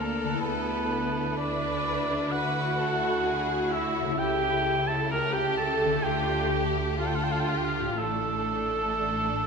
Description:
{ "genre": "classical, slow romantic movement for symphony orchestra", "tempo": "58-66 BPM", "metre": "4/4", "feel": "rubato", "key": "D minor", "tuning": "A4 = 440 Hz", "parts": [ { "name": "warm symphonic violin section", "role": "melody", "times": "0.0-9.5 s", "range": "A3 to E4", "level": "-36 LUFS", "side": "left 6 dB", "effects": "none" }, { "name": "warm cor anglais", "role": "second line", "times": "0.0-9.5 s", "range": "A4 to A5", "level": "-30 LUFS", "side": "right 3 dB", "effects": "none" }, { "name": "warm symphonic violin section", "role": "second line", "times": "0.0-9.5 s", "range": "E4 to B4", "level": "-34 LUFS", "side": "left 2 dB", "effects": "none" }, { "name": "rich symphonic viola section", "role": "accompaniment", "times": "0.0-9.5 s", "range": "A3 to Bb4", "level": "-30 LUFS", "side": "equal", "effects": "none" }, { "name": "concert harp", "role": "arpeggios", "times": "0.0-9.5 s", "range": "A2 to A4", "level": "-36 LUFS", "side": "left 6 dB", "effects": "none" }, { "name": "dark symphonic cello section", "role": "bass", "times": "0.0-9.5 s", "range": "A2 to D3", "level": "-35 LUFS", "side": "right 1 dB", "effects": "none" }, { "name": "rich symphonic double bass section", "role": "bass", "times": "0.0-9.5 s", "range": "A1 to D2", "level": "-35 LUFS", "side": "right 2 dB", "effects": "none" } ], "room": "moderate scoring stage reverb, RT60 1.9 s", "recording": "minimal, uncompressed stereo recording", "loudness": "-25 LUFS", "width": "side -5 dB against mid", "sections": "0.0-9.5 A section", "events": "none", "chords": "0.4 E7/D; 4.2 A7/C#; 6.0 Dm; 8.0 Dm/A" }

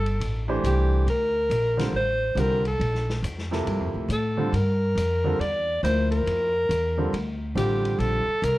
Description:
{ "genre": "modal jazz", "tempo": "139 BPM", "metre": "4/4", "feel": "swing 64% on 8ths", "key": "G dorian", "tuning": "A4 = 440 Hz", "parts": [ { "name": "warm alto saxophone", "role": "melody", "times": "0.0-8.6 s", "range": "G4 to D5", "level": "-25 LUFS", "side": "equal", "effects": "none" }, { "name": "upright bass", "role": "bass", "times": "0.0-8.6 s", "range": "G1 to A2", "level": "-25 LUFS", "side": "equal", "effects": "none" }, { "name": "vintage drum kit", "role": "drums", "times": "0.1-8.6 s", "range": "hi-hat, ride cymbal, snare drum", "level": "-39 LUFS", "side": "left 2 dB", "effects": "none" }, { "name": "clear concert grand piano", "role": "accompaniment", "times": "0.5-8.2 s", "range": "C3 to C5", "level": "-29 LUFS", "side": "right 2 dB", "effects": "none" } ], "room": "light reverb", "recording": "dark, warm production", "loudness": "-22 LUFS", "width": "side -17 dB against mid", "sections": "0.0-8.6 A section", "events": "none", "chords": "0.0 Gm9; 4.5 Bb" }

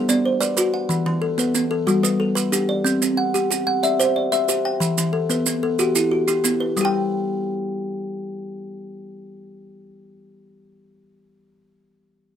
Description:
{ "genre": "southern african traditional, mbira-style interlocking cycle", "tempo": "123 BPM (dotted quarters)", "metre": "12/8", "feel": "straight", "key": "unclear", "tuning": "A4 = 440 Hz", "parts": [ { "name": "kalimba", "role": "arpeggios", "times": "0.0-10.0 s", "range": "E3 to G5", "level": "-21 LUFS", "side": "left 2 dB", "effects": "none" }, { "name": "kalimba", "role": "arpeggios", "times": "0.0-10.0 s", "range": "E3 to G5", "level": "-24 LUFS", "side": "right 3 dB", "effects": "none" }, { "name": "maracas", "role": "percussion", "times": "0.1-6.9 s", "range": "none", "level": "-25 LUFS", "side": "right 7 dB", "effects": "none" } ], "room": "light reverb", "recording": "close, detailed microphones", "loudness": "-18 LUFS", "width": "side -9 dB against mid", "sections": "0.0-6.8 A section; 6.8-10.7 B section", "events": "none", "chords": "0.0 Bm; 0.9 E5; 1.9 G; 2.9 C; 4.8 Em; 6.8 N.C." }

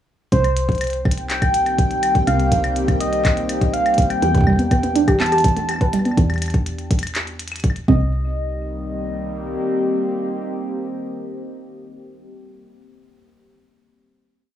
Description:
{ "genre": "IDM", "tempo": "123 BPM", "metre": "4/4", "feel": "straight", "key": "unclear", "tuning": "A4 = 437 Hz", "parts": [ { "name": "soft struck synth lead", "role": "melody", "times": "0.3-11.8 s", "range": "C5 to A5", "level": "-23 LUFS", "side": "right 1 dB", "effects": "chorus, cassette tape, tape echo" }, { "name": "warbly tape-like pad", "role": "sustained chords", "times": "1.1-12.4 s", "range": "Eb3 to G4", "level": "-25 LUFS", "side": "left 1 dB", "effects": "chorus, built-in reverb" }, { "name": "woody FM bass", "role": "bass", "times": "0.3-9.6 s", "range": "C2 to E2", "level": "-24 LUFS", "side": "equal", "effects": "tube saturation" }, { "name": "electronic kick drum", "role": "drums", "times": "0.3-8.0 s", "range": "none", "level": "-18 LUFS", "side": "equal", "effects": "none" }, { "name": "glitchy drum kit", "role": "drums", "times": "0.3-7.9 s", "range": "claves, handclaps, hi-hat", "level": "-28 LUFS", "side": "left 2 dB", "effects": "none" }, { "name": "pulsing gated texture", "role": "texture", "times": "1.2-6.2 s", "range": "G5", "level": "-30 LUFS", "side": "equal", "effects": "chorus, built-in reverb, sidechain pumping" }, { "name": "warbly dusty pluck", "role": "arpeggios", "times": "4.2-8.3 s", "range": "G3 to B4", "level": "-20 LUFS", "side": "right 2 dB", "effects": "chorus, digital delay" } ], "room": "digital ambience", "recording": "rough home demo mix, small room ambience", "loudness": "-17 LUFS", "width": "side -10 dB against mid", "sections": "0.3-8.1 groove; 8.1-12.0 final chord", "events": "none", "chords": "0.3 Cm7; 4.2 Em7; 7.9 Cm; 8.1 Cm7" }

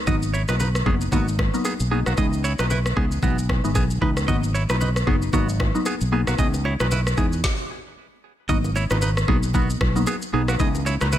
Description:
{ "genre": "afrobeats", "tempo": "114 BPM", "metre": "4/4", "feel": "swing 58% on 16ths", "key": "G# minor", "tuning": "A4 = 440 Hz", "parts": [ { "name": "glassy wavetable pluck", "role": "accompaniment", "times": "0.0-11.1 s", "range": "E3 to D#4", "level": "-26 LUFS", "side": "left 2 dB", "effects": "chorus" }, { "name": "direct-recorded clean electric guitar", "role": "riff", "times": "0.1-11.2 s", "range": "A#3 to D#5", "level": "-28 LUFS", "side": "right 4 dB", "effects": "ping-pong delay" }, { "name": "fingered electric bass", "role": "bass", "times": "0.1-11.2 s", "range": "F#1 to E2", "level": "-23 LUFS", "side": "equal", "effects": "none" }, { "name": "afro-pop drum kit", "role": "drums", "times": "0.1-11.2 s", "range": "kick drum, rim click, shaker, snare drum", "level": "-24 LUFS", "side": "equal", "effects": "none" }, { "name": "congas and bongos", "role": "percussion", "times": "0.1-11.2 s", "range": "none", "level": "-33 LUFS", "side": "left 4 dB", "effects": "none" } ], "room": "digital ambience", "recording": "none", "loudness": "-19 LUFS", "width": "side -12 dB against mid", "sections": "0.0-8.5 A section; 8.5-11.2 B section", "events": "stop 7.4-8.5", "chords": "0.1 G#m7; 2.2 C#m7; 4.3 G#m7; 6.4 C#m7; 8.5 G#m7; 10.6 C#m7" }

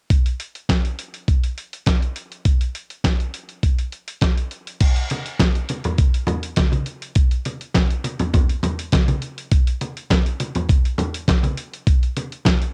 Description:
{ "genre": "funk", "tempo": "102 BPM", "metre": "4/4", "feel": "straight", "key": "none", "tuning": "none", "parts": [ { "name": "dusty soul sampler-style drum kit", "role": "drums", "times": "0.1-12.7 s", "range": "crash cymbal, handclaps, hi-hat, kick drum, snare drum", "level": "-20 LUFS", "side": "equal", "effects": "cassette tape" }, { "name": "congas", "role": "percussion", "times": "5.1-12.6 s", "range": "none", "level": "-27 LUFS", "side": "equal", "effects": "none" } ], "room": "little or no reverb", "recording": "home recording on cassette", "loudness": "-21 LUFS", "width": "mono", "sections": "0.1-4.8 A section; 4.8-12.7 B section", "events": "none", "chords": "none" }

